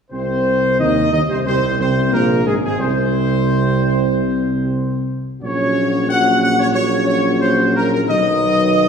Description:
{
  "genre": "classical",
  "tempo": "91 BPM",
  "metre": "4/4",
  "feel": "straight",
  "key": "Ab mixolydian",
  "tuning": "A4 = 440 Hz",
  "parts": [
    { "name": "bright trumpet section", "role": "melody", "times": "0.1-8.9 s", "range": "Ab4 to Gb5", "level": "-18 LUFS", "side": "equal", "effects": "none" },
    { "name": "warm French horn section", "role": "sustained chords", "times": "0.1-8.9 s", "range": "Ab3 to Gb4", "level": "-21 LUFS", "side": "left 2 dB", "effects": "none" },
    { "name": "warm trombone section", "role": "sustained chords", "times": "0.1-8.9 s", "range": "Ab2 to Gb3", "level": "-22 LUFS", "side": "right 2 dB", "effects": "none" },
    { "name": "warm tuba", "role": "bass", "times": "0.1-8.9 s", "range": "Ab1 to Eb2", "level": "-20 LUFS", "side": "right 1 dB", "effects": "none" }
  ],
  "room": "wet scoring stage reverb, RT60 1.5 s",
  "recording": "heard from further back in the room",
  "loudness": "-14 LUFS",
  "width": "side -6 dB against mid",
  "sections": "0.1-8.9 A section",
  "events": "none",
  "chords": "0.1 Ab; 5.4 Gb/Bb; 8.1 B"
}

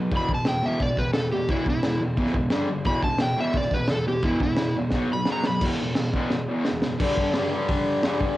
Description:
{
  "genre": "garage rock duo or trio",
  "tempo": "174 BPM",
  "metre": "4/4",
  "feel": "straight",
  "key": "E minor",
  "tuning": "A4 = 435 Hz",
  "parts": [
    { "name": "fuzz guitar", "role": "riff", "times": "0.0-8.4 s", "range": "E2 to B3", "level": "-25 LUFS", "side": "equal", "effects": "distortion, cassette tape" },
    { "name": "crunchy breakbeat drum kit", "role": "drums", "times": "0.1-8.3 s", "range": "crash cymbal, hi-hat, kick drum, snare drum", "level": "-26 LUFS", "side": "equal", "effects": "cassette tape" },
    { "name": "overdriven slide guitar", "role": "melody", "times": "0.2-5.6 s", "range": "E4 to B5", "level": "-27 LUFS", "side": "equal", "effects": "cassette tape" }
  ],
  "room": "light reverb, small room ambience",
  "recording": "home recording on cassette",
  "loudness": "-22 LUFS",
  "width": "side -16 dB against mid",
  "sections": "0.0-5.6 A section; 5.6-7.0 B section; 7.0-8.4 C section",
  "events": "electric slide guitar solo 0.0-5.6; drum fill 4.9-5.6, 6.3-7.0",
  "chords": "0.1 E5; 2.5 G5; 2.9 E5; 4.9 B5; 5.6 E5; 7.0 G5"
}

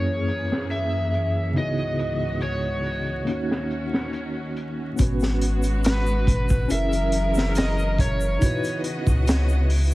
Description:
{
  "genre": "trip hop",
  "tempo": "70 BPM",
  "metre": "4/4",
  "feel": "straight",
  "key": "G# minor",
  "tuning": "A4 = 442 Hz",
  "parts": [
    { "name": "overdriven slide guitar", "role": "melody", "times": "0.0-8.8 s", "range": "B4 to E5", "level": "-29 LUFS", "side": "equal", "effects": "tape echo" },
    { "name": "mellow tine electric piano", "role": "accompaniment", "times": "0.0-9.9 s", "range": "F#2 to B4", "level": "-28 LUFS", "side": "equal", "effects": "medium stereo tremolo" },
    { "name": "clear studio string section", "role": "sustained chords", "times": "0.0-9.9 s", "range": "C#2 to D#5", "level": "-30 LUFS", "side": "equal", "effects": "low-pass filter" },
    { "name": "bowed-like drone", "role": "texture", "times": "0.0-5.0 s", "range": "C#4", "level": "-43 LUFS", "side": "right 2 dB", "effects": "none" },
    { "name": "crunchy breakbeat drum kit", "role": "drums", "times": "0.1-9.9 s", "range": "hi-hat, kick drum, snare drum", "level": "-24 LUFS", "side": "equal", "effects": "low-pass filter on kick, low-pass filter on hats, low-pass filter on snare, low-pass filter on room" },
    { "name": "soft dub sub bass", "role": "bass", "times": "5.0-9.9 s", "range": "F#1 to C#2", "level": "-22 LUFS", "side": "equal", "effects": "none" },
    { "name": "egg shaker", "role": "percussion", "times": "5.0-9.9 s", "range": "none", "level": "-44 LUFS", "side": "left 4 dB", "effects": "none" }
  ],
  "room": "studio ambience",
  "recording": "vinyl crackle",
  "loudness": "-21 LUFS",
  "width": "side -18 dB against mid",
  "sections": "0.0-5.0 A section; 5.0-9.9 B section",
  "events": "none",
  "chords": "0.0 F#9; 1.6 C#m11; 3.3 D#m7; 5.0 G#m7; 6.7 F#9; 8.4 C#m11"
}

